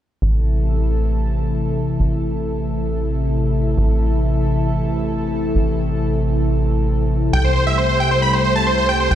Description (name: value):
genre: trance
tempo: 135 BPM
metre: 4/4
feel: straight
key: A minor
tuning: A4 = 439 Hz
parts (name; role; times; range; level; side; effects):
- lush unison pad; sustained chords; 0.2-9.2 s; C3 to A4; -20 LUFS; left 1 dB; chorus
- tight sequencer bass; bass; 0.2-9.2 s; A1 to C2; -20 LUFS; equal; none
- dense compressed supersaw; melody; 7.3-9.2 s; C5 to B5; -16 LUFS; right 1 dB; ping-pong delay
room: moderate huge ambient reverb, RT60 3.9 s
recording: played on a big sound system in a bare room, stone room reverb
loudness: -16 LUFS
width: side -11 dB against mid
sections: 0.2-9.2 A section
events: none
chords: 0.2 Am; 7.3 C6